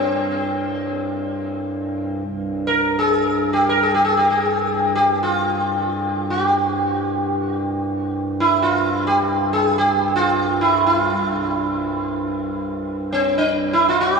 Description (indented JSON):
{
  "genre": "indian classical, Hindustani",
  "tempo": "free time",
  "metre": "none",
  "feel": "none",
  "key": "unclear",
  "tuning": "A4 = 440 Hz",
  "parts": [
    { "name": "sitar", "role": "melody", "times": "0.0-14.2 s", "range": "C4 to Bb4", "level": "-18 LUFS", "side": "equal", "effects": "diffuse ambient delay" },
    { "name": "pedal harmonium", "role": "drone", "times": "0.0-14.2 s", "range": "C2 to G2", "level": "-24 LUFS", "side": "right 1 dB", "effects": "none" }
  ],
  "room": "wet cathedral reverb, RT60 6.3 s",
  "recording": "dreamy mix soaked in reverb, studio ambience",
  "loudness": "-17 LUFS",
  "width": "side -4 dB against mid",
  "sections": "0.0-2.2 A section; 2.2-14.2 A section",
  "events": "none",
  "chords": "none"
}